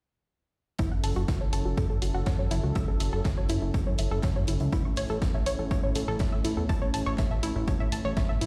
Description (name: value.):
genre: melodic techno.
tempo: 122 BPM.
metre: 4/4.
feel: straight.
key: F# minor.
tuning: A4 = 440 Hz.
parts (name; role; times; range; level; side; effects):
warm analog pad; sustained chords; 0.8-8.5 s; F#3 to A4; -38 LUFS; equal; chorus, sidechain pumping.
analog pluck; arpeggios; 0.8-8.4 s; E4 to C#6; -36 LUFS; equal; chorus, cassette tape, sidechain pumping, dub echo.
fat analog bass; bass; 0.8-8.5 s; F#1 to A2; -33 LUFS; equal; sidechain pumping.
big rock drum kit; drums; 0.8-8.5 s; hi-hat, snare drum; -49 LUFS; equal; sidechain pumping on hats, high-pass filter on hats, studio reverb, high-pass filter on snare, high-pass filter on room.
electronic kick drum; drums; 0.8-8.3 s; none; -31 LUFS; equal; studio reverb.
electronic hi-hat; drums; 1.0-8.5 s; none; -40 LUFS; equal; studio reverb.
room: studio reverb.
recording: played on a big sound system in a bare room, stone room reverb.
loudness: -28 LUFS.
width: mono.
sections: 0.8-8.5 A section.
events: filter sweep on analog synth bass 0.8-8.5; filter sweep on synth pluck 0.8-8.5.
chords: 0.8 F#m7; 4.7 A.